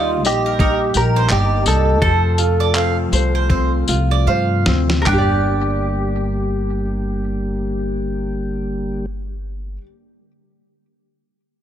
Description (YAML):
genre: acoustic pop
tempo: 74-87 BPM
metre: 4/4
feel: swing 60% on 16ths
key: G minor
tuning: A4 = 439 Hz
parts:
  - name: direct-recorded clean electric guitar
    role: melody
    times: 0.0-9.8 s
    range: F4 to Bb4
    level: -22 LUFS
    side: right 1 dB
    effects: ensemble chorus, ping-pong delay
  - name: ukulele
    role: accompaniment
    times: 0.0-9.9 s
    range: C4 to Eb5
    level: -22 LUFS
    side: equal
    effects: none
  - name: mellow tonewheel organ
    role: sustained chords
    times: 0.0-9.1 s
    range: C3 to G4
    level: -25 LUFS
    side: left 1 dB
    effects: slow rotary speaker
  - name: mandolin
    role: arpeggios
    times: 0.0-7.4 s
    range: Bb4 to G5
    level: -26 LUFS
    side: right 8 dB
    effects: none
  - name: upright bass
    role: bass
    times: 0.0-9.8 s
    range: G1 to G2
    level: -20 LUFS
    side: equal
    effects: none
  - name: dusty soul sampler-style drum kit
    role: drums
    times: 0.2-5.3 s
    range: handclaps, kick drum, snare drum, tambourine, toms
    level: -21 LUFS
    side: equal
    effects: none
room: studio ambience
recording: none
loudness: -15 LUFS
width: side -10 dB against mid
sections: 0.0-5.1 A section; 5.1-8.3 B section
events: slowing down 0.0-5.1; drum fill 4.3-5.1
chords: 0.0 Cm; 2.0 F; 5.1 Gm